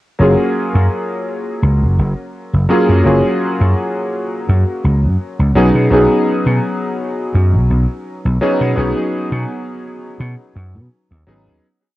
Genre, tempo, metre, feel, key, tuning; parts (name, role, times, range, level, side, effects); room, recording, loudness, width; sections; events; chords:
vaporwave; 84 BPM; 4/4; swing 54% on 16ths; F# major; A4 = 440 Hz
warm electric grand piano; accompaniment; 0.2-11.6 s; F#3 to G#4; -16 LUFS; equal; lush chorus, cassette tape, tape echo
vintage slap bass; bass; 0.2-11.6 s; F#1 to B2; -13 LUFS; equal
light reverb; home recording on cassette; -13 LUFS; side -16 dB against mid
0.2-11.6 groove
fade-out 7.8-11.6
0.2 F#maj9; 5.6 B6